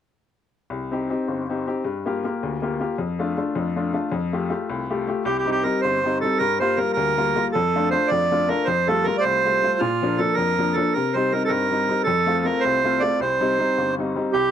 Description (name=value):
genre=celtic folk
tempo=106 BPM (dotted quarters)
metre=6/8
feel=straight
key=C dorian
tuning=A4 = 441 Hz
part: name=bright upright piano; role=accompaniment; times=0.7-14.5 s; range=G1 to G4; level=-23 LUFS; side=left 4 dB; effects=none
part: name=accordion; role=melody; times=5.3-14.5 s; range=F4 to D5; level=-20 LUFS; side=right 3 dB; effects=none
room=small room reverb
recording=dry, close 1970s-style studio recording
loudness=-20 LUFS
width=side -9 dB against mid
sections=0.7-5.3 A section; 5.3-14.3 B section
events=none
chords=0.7 Cm; 1.8 Gm7; 3.0 Dm/F; 4.1 Fadd9; 5.3 Cm; 6.4 Gm7; 7.5 Dm/F; 8.7 Fadd9; 9.8 Bb; 10.9 Cm; 12.1 F; 13.2 Cm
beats=| 0.71 1.28 | 1.85 2.42 | 2.99 3.56 | 4.13 4.70 | 5.26 5.83 | 6.40 6.97 | 7.54 8.11 | 8.67 9.24 | 9.81 10.38 | 10.94 11.51 | 12.08 12.65 | 13.21 13.78 | 14.35